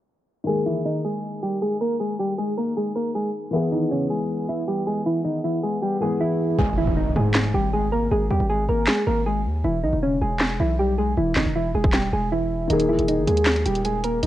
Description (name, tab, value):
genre	hip hop, trap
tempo	157 BPM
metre	4/4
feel	half-time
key	G# harmonic minor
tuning	A4 = 440 Hz
part	felt-muted upright piano	accompaniment	0.4-6.6, 12.7-14.3 s	D#3 to G#4	-26 LUFS	left 2 dB	low-pass filter, cassette tape
part	soft electric-piano-like synth keys	melody	0.5-14.3 s	C#3 to A#4	-23 LUFS	right 1 dB	chorus, low-pass filter, cassette tape
part	hard-hitting 808-style bass	bass	6.6-14.3 s	D#1 to G#2	-24 LUFS	equal	none
part	impact	sound effects	6.6-8.1 s	none	-30 LUFS	equal	none
part	trap drum kit	drums	7.3-14.3 s	handclaps, hi-hat, kick drum, snare drum	-23 LUFS	equal	cassette tape
room	digital ambience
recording	home recording on cassette, low-pass filter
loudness	-20 LUFS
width	side -13 dB against mid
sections	0.5-6.6 A section; 6.6-14.3 B section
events	filter sweep 0.5-6.6; hi-hats muted 6.6-12.7; impact 6.6-8.1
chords	0.5 G#sus2; 3.5 E; 6.6 G#sus2; 9.6 E; 12.7 D#sus4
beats	| 0.47 0.85 1.24 1.62 | 2.00 2.38 2.76 3.15 | 3.53 3.91 4.29 4.67 | 5.06 5.44 5.82 6.20 | 6.59 6.97 7.35 7.73 | 8.11 8.50 8.88 9.26 | 9.64 10.03 10.41 10.79 | 11.17 11.55 11.94 12.32 | 12.70 13.08 13.46 13.85 | 14.23